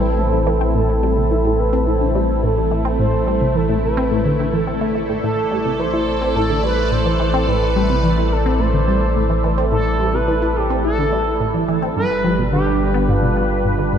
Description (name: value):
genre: ambient, sequencer-driven space music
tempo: 107 BPM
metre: 4/4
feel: straight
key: A minor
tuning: A4 = 440 Hz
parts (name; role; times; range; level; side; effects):
- expressive synth lead; melody; 0.0-13.9 s; F4 to C5; -22 LUFS; right 1 dB; chorus, shimmer reverb, tape echo
- sweeping resonant pad; sustained chords; 0.0-14.0 s; G3 to D5; -22 LUFS; right 1 dB; chorus, shimmer reverb
- warm sub bass; bass; 0.0-14.0 s; G1 to A1; -21 LUFS; equal; none
- resonant blip pluck; riff; 0.2-14.0 s; G2 to E4; -21 LUFS; equal; phaser, tape echo
room: wet cathedral reverb, RT60 6.3 s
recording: in a vast, echoing space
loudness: -15 LUFS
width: side -8 dB against mid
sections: 0.0-14.0 A section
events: none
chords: 0.0 Amadd9; 12.0 G7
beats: 0.19 | 0.75 1.31 1.87 2.43 | 2.99 3.55 4.11 4.67 | 5.23 5.79 6.36 6.92 | 7.48 8.04 8.60 9.16 | 9.72 10.28 10.84 11.40 | 11.96 12.52 13.09 13.64